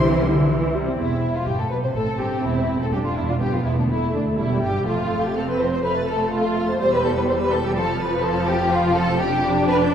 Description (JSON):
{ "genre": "quick classical-period movement for string orchestra", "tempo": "124 BPM", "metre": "4/4", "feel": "straight", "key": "C major", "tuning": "A4 = 440 Hz", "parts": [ { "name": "rich studio violin section", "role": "melody", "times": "0.0-9.9 s", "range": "D4 to A6", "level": "-34 LUFS", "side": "left 4 dB", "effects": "none" }, { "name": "rich studio violin section", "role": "second line", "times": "0.0-9.9 s", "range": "D4 to C5", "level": "-23 LUFS", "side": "left 1 dB", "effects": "none" }, { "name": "rich studio viola section", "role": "accompaniment", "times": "0.0-9.9 s", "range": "C3 to E4", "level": "-24 LUFS", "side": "right 1 dB", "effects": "none" }, { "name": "dark studio double bass section", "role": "bass", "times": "0.0-9.9 s", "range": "E1 to D2", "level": "-27 LUFS", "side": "right 2 dB", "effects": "none" }, { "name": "rich studio cello section", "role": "bass", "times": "0.0-9.9 s", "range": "D2 to E3", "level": "-25 LUFS", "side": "right 1 dB", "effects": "none" } ], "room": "wet scoring stage reverb, RT60 1.7 s", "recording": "heard from further back in the room", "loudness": "-19 LUFS", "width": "side -8 dB against mid", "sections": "1.0-9.9 A section", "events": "none", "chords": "0.0 C; 1.0 C/E; 2.9 G; 3.9 Em7; 4.9 F; 6.8 C/E; 7.8 F; 8.7 G7/F" }